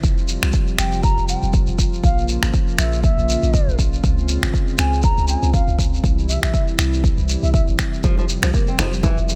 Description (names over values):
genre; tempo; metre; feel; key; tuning
afro house; 120 BPM; 4/4; swing 57% on 16ths; F harmonic minor; A4 = 440 Hz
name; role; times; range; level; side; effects
warm analog pad; sustained chords; 0.0-9.4 s; C3 to F4; -29 LUFS; equal; chorus, sidechain pumping
warm 808-style bass; bass; 0.0-9.4 s; F1 to Db2; -24 LUFS; equal; tube saturation, sidechain pumping
electronic kick drum; drums; 0.0-9.2 s; none; -21 LUFS; equal; small room ambience
shekere; percussion; 0.0-9.4 s; none; -32 LUFS; equal; none
electronic finger snaps; drums; 0.4-8.9 s; none; -25 LUFS; equal; small room ambience
bass bansuri; melody; 0.8-7.6 s; E5 to Bb5; -28 LUFS; equal; delay
flamenco guitar; arpeggios; 8.0-9.2 s; E3 to C4; -29 LUFS; equal; sidechain pumping, delay
congas; percussion; 8.0-9.4 s; none; -30 LUFS; equal; none
room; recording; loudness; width
studio reverb; none; -19 LUFS; mono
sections
0.0-9.4 A section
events
none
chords
0.0 Fsus2; 2.0 Bbm; 4.0 Dbmaj7; 6.0 C; 8.0 Fsus2